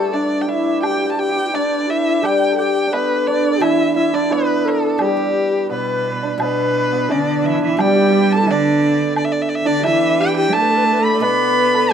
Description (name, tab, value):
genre	chinese traditional, Chinese chamber ensemble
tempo	87 BPM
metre	2/4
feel	straight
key	G gong mode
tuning	A4 = 441 Hz
part	rich erhu	melody	0.0-11.9 s	G4 to B5	-20 LUFS	equal	none
part	breathy bright xiao	second line	0.0-11.9 s	D4 to D5	-21 LUFS	left 6 dB	none
part	hammered dulcimer	second line	0.0-11.9 s	G3 to D5	-20 LUFS	right 6 dB	none
part	guzheng	accompaniment	0.0-11.9 s	B2 to D4	-25 LUFS	left 6 dB	none
part	woodblock	percussion	0.1-11.9 s	none	-27 LUFS	equal	none
part	bright cello	second line	5.7-11.9 s	B2 to B3	-20 LUFS	right 6 dB	none
room	light reverb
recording	close, detailed microphones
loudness	-14 LUFS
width	side -8 dB against mid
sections	0.0-6.4 A section; 6.4-11.9 B section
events	none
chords	none